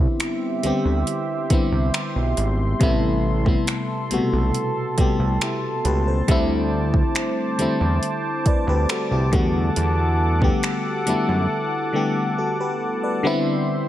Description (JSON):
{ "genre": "contemporary R&B", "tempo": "69 BPM", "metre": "4/4", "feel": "straight", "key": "E minor", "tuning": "A4 = 440 Hz", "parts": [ { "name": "FM electric piano", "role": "accompaniment", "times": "0.0-13.9 s", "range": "B2 to D5", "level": "-23 LUFS", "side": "left 2 dB", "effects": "chorus" }, { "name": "warm analog pad", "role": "sustained chords", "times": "0.0-13.9 s", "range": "G4 to D6", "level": "-27 LUFS", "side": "right 1 dB", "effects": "chorus, sidechain pumping" }, { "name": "fat analog bass", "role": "bass", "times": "0.0-11.5 s", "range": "G#1 to F#2", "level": "-22 LUFS", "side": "equal", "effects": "none" }, { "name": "smooth R&B drum kit", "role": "drums", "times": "0.2-11.3 s", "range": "finger snaps, hi-hat, kick drum", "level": "-22 LUFS", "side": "equal", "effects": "overdrive, vintage 12-bit sampler grit" } ], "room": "digital ambience", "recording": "none", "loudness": "-19 LUFS", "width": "side -13 dB against mid", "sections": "0.0-13.2 A section", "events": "break 11.5-13.2", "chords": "0.0 Cmaj7; 2.8 Am7; 6.3 D7sus4; 9.3 Em11; 13.2 Cmaj7" }